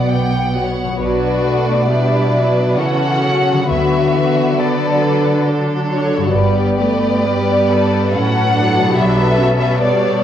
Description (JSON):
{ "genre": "classical, slow romantic movement for symphony orchestra", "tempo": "68 BPM", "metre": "3/4", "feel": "uneven beats, rubato", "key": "B minor", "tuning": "A4 = 442 Hz", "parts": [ { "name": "rich studio violin section", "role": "melody", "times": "0.0-10.2 s", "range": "C#5 to F#5", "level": "-20 LUFS", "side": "left 2 dB", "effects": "none" }, { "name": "clear clarinet", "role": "second line", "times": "0.0-0.6 s", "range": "B3", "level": "-27 LUFS", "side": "right 1 dB", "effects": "none" }, { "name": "rich studio violin section", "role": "second line", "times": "0.0-10.2 s", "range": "E4 to G5", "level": "-20 LUFS", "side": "left 2 dB", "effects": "none" }, { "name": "rich studio viola section", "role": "accompaniment", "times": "0.0-10.2 s", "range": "E3 to D4", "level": "-19 LUFS", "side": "right 2 dB", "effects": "none" }, { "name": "concert harp", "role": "arpeggios", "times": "0.0-10.2 s", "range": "G2 to D5", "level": "-23 LUFS", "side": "left 7 dB", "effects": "none" }, { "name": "rich studio cello section", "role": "bass", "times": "0.0-10.2 s", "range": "G2 to D3", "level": "-19 LUFS", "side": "right 3 dB", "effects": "none" }, { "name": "warm studio double bass section", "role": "bass", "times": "0.0-9.8 s", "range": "G1 to D2", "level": "-24 LUFS", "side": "right 3 dB", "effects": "none" } ], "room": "moderate recital hall reverb, RT60 1.3 s", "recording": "worn, warbling old tape, cassette tape, warbly pitch drift", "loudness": "-13 LUFS", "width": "side -10 dB against mid", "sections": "0.0-1.0 A section; 1.0-10.2 B section", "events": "none", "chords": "0.0 Bm; 3.7 Bm/D; 6.4 Gmaj7; 9.0 G/B", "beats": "0.08 | 1.01 1.91 2.79 | 3.70 4.59 5.48 | 6.36 7.27 8.15 | 8.98 9.81" }